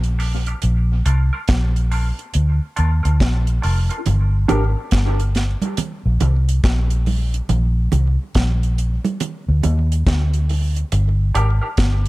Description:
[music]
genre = dub reggae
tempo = 70 BPM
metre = 4/4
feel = swing 63% on 16ths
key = unclear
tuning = A4 = 442 Hz
[part]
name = vintage muted fingered electric bass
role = bass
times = 0.0-12.1 s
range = F1 to Eb2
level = -16 LUFS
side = equal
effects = none
[part]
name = deep reggae drum kit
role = drums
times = 0.0-12.1 s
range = hi-hat, kick drum, snare drum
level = -22 LUFS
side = equal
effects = none
[part]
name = mellow electric guitar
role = accompaniment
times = 0.2-4.6, 11.3-11.7 s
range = D4 to Bb4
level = -26 LUFS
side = right 1 dB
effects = high-pass filter, tape echo
[part]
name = congas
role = percussion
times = 4.1-12.0 s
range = none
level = -25 LUFS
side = right 5 dB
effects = high-pass filter on perc, tape echo
[sound]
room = studio reverb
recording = dark, warm production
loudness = -16 LUFS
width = side -19 dB against mid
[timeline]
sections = 0.0-12.1 A section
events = break 0.0-4.1; filter sweep 0.0-4.1, 7.5-12.1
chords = 0.0 Gm; 0.6 Bb; 4.1 Gm; 7.5 Bb; 10.9 Gm

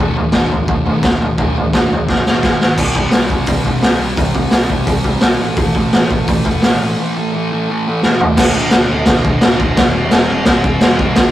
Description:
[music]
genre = garage rock duo or trio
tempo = 172 BPM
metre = 4/4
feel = straight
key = unclear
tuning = A4 = 442 Hz
[part]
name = thick fuzz guitar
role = riff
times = 0.0-11.3 s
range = D2 to C4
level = -18 LUFS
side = equal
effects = distortion
[part]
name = growling picked electric bass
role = bass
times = 0.0-11.3 s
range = D1 to G2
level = -26 LUFS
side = equal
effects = none
[part]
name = raw garage drum kit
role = drums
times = 0.2-11.2 s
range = crash cymbal, hi-hat, kick drum, snare drum, toms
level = -12 LUFS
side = equal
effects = none
[sound]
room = light reverb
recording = rough rehearsal-room recording, warm saturation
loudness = -12 LUFS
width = side -13 dB against mid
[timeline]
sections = 0.0-2.8 A section; 2.8-8.4 B section; 8.4-11.3 C section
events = drum fill 2.1-2.8, 8.0-8.4; break 7.0-8.4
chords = 0.0 D5; 2.4 G#5; 2.8 C5; 5.4 A5; 8.4 D5; 9.8 C/E

